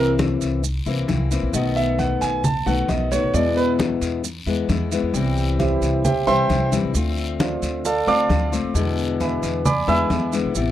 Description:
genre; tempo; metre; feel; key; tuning
latin, Cuban son and guajira; 133 BPM; 4/4; straight; unclear; A4 = 444 Hz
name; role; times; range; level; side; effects
fingerpicked steel-string acoustic guitar; accompaniment; 0.0-10.7 s; B2 to F#4; -23 LUFS; left 6 dB; none
warm grand piano; arpeggios; 0.0-10.3 s; E4 to E6; -22 LUFS; right 4 dB; none
upright bass; bass; 0.0-10.7 s; A1 to E2; -24 LUFS; equal; none
congas; percussion; 0.2-10.7 s; none; -25 LUFS; left 1 dB; none
guiro; percussion; 0.2-10.7 s; none; -36 LUFS; left 5 dB; none
maracas; percussion; 0.2-10.7 s; none; -34 LUFS; right 11 dB; none
room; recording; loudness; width
light reverb; dry, close 1970s-style studio recording; -18 LUFS; side -12 dB against mid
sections
0.0-10.7 A section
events
grand piano solo 0.0-10.7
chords
0.0 C7; 1.5 B7; 3.3 E; 5.1 C; 6.9 Dm7; 8.8 E7

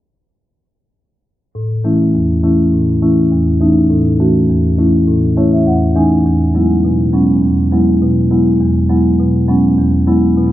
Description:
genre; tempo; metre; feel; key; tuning
dancehall; 102 BPM; 4/4; straight; unclear; A4 = 439 Hz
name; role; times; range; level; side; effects
marimba with medium mallets; accompaniment; 1.6-10.5 s; E2 to G#5; -10 LUFS; equal; none
room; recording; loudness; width
light reverb, small room ambience; dry, gritty hardware recording, cassette tape, low-pass filter; -10 LUFS; side -14 dB against mid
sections
1.6-10.5 A section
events
filter sweep 1.6-10.5; marimba fill 5.1-6.3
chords
1.6 A; 6.3 Eadd9

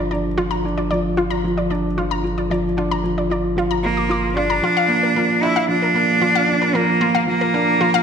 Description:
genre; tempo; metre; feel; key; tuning
piano and strings electronica; 113 BPM; 4/4; straight; unclear; A4 = 440 Hz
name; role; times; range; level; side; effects
analog pluck; arpeggios; 0.0-8.0 s; F4 to D6; -24 LUFS; left 3 dB; chorus, digital delay
felt-muted upright piano; riff; 0.0-8.0 s; F3 to D5; -20 LUFS; right 1 dB; digital delay
round analog bass; bass; 0.0-4.6 s; G1; -27 LUFS; equal; none
bright cello; melody; 3.8-8.0 s; Bb3 to E4; -17 LUFS; right 1 dB; none
room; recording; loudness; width
moderate concert hall reverb, RT60 1.9 s, small room reverb; none; -16 LUFS; side -7 dB against mid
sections
0.0-4.6 A section; 4.6-8.0 B section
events
build-up 4.6-8.0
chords
0.0 G7(no3); 4.6 Gm7 (rootless)

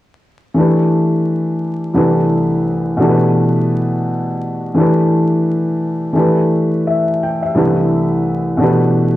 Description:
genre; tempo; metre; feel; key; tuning
hip hop; 86 BPM; 4/4; swing 60% on 16ths; unclear; A4 = 440 Hz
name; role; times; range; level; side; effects
felt-muted upright piano; accompaniment; 0.5-9.2 s; C2 to G5; -13 LUFS; equal; low-pass filter, cassette tape
room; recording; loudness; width
light reverb, small room ambience; home recording on cassette, vinyl crackle; -13 LUFS; side -15 dB against mid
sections
0.6-9.2 A section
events
none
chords
0.6 Dsus24; 2.0 C6; 3.0 Em7/B; 4.8 Dsus24; 7.5 C6; 8.6 Em7/B

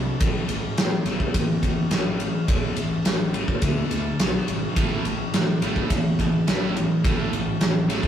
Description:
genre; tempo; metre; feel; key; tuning
hard rock; 106 BPM; 4/4; straight; unclear; A4 = 440 Hz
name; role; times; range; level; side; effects
scooped high-gain guitar; riff; 0.0-8.1 s; A2 to D4; -28 LUFS; left 3 dB; distortion
fuzz fingered electric bass; bass; 0.0-8.0 s; G#1 to A2; -31 LUFS; equal; overdrive
big rock drum kit; drums; 0.2-8.1 s; kick drum, ride cymbal, snare drum; -23 LUFS; equal; none
overdriven electric guitar; riff; 4.8-8.1 s; A2 to A3; -26 LUFS; right 4 dB; none
room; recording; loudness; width
moderate studio reverb, RT60 0.6 s; rough rehearsal-room recording, warm saturation; -21 LUFS; side -9 dB against mid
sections
0.0-8.1 A section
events
none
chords
0.2 A5; 3.6 D5; 4.2 B5; 4.8 A5

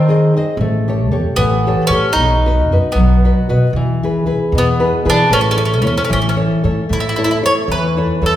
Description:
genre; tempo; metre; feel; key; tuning
italian folk, Italian serenade; 76 BPM (dotted quarters); 6/8; straight; A major; A4 = 440 Hz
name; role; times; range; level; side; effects
bowl-back mandolin; melody; 0.0-8.3 s; B3 to C#5; -17 LUFS; equal; none
nylon-string guitar; accompaniment; 0.0-8.4 s; B2 to D#5; -16 LUFS; left 1 dB; none
upright bass; bass; 0.6-8.4 s; A1 to E3; -17 LUFS; right 1 dB; none
room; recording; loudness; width
wet recital hall reverb, RT60 1.8 s; recorded in a church or concert hall; -12 LUFS; side -12 dB against mid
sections
0.0-6.9 A section; 6.9-8.4 B section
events
none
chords
0.0 G#; 0.6 A7; 2.2 B; 3.7 E; 5.3 A

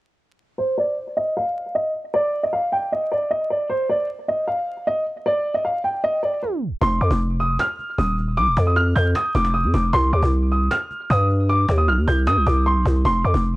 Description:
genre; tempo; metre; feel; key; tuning
hip hop, trap; 154 BPM; 4/4; half-time; unclear; A4 = 441 Hz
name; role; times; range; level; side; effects
dark concert grand piano; melody; 0.6-13.4 s; C5 to G6; -21 LUFS; equal; low-pass filter, tape echo
growling 808-style bass; bass; 6.8-13.6 s; Eb1 to G2; -18 LUFS; equal; none
cajon; drums; 6.8-13.5 s; none; -29 LUFS; equal; vintage 12-bit sampler grit
room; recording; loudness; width
small room ambience; dry, gritty hardware recording, vinyl crackle, tape stop; -18 LUFS; side -19 dB against mid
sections
0.6-6.8 A section; 6.8-13.6 B section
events
filter sweep on grand piano 0.6-6.8; tape stop 6.4-6.8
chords
0.6 N.C.; 6.8 F5; 9.9 Cm; 13.1 F5

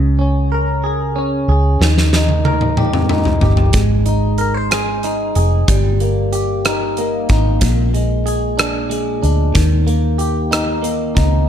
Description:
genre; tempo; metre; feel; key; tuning
six-eight pop ballad; 62 BPM (dotted quarters); 6/8; straight; unclear; A4 = 440 Hz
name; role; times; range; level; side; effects
direct-recorded clean electric guitar; accompaniment; 0.0-11.5 s; Bb2 to C5; -18 LUFS; equal; double-tracked left and right
vintage muted fingered electric bass; bass; 0.0-11.5 s; F1 to Eb2; -17 LUFS; equal; none
huge arena drum kit; drums; 1.8-11.3 s; hi-hat, kick drum, rim click, snare drum, toms; -18 LUFS; equal; none
room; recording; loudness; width
small room ambience; dark, warm production; -13 LUFS; side -9 dB against mid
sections
0.0-11.5 A section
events
drum fill 1.8-3.7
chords
0.0 Db5; 1.8 Eb; 3.7 Abadd9; 5.7 Eb/G; 7.6 Bb7; 9.6 Eb

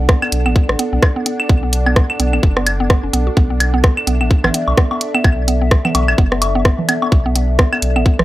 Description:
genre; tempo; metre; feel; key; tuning
minimal techno; 128 BPM; 4/4; swing 58% on 16ths; B minor; A4 = 440 Hz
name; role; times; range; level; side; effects
saturated sub bass; bass; 0.0-8.2 s; F#1 to B1; -18 LUFS; equal; tube saturation, sidechain pumping
swarming drone; texture; 0.0-8.2 s; D4; -31 LUFS; right 2 dB; built-in reverb, sidechain pumping
warbly tape-like pad; texture; 0.0-8.2 s; A4 to F#5; -24 LUFS; left 2 dB; chorus, built-in reverb, sidechain pumping
mallet-like synth pluck; riff; 0.1-8.1 s; B3 to F#4; -22 LUFS; right 1 dB; chorus, sidechain pumping, analog delay
electronic kick drum; drums; 0.1-8.2 s; none; -13 LUFS; equal; overdrive
garage drum kit; drums; 0.1-8.2 s; hi-hat, rim click; -16 LUFS; equal; overdrive
claves, woodblock and congas; percussion; 0.2-8.2 s; none; -20 LUFS; equal; overdrive, tape echo
room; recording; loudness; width
little or no reverb; dry, gritty hardware recording; -12 LUFS; side -16 dB against mid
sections
0.0-8.2 A section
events
none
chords
0.0 Bm7

